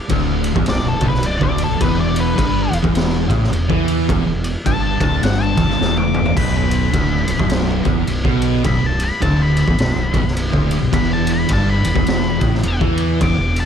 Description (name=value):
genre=stoner and doom metal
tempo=105 BPM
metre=4/4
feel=swing 61% on 8ths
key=B minor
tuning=A4 = 440 Hz
part: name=overdriven electric guitar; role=riff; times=0.1-13.6 s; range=B1 to E3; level=-23 LUFS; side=equal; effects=none
part: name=thick fuzz guitar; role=riff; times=0.1-13.6 s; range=B1 to E3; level=-23 LUFS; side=left 9 dB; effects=distortion
part: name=thick fuzz guitar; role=riff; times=0.1-13.6 s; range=B1 to E3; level=-22 LUFS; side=right 9 dB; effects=distortion
part: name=fuzz fingered electric bass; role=bass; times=0.1-13.6 s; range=B0 to E2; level=-22 LUFS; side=equal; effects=overdrive
part: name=raw garage drum kit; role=drums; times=0.1-13.7 s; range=crash cymbal, kick drum, ride cymbal, snare drum, toms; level=-20 LUFS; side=equal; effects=none
part: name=octave-fuzz lead guitar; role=melody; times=0.7-13.7 s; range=A4 to D6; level=-24 LUFS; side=left 3 dB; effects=distortion, tape echo
room=small room ambience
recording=dark, warm production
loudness=-14 LUFS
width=side -8 dB against mid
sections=0.0-13.7 A section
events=lead electric guitar solo 0.0-13.7; drum fill 5.8-6.4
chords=0.0 Bm; 1.8 E5; 6.4 Bm; 10.9 E5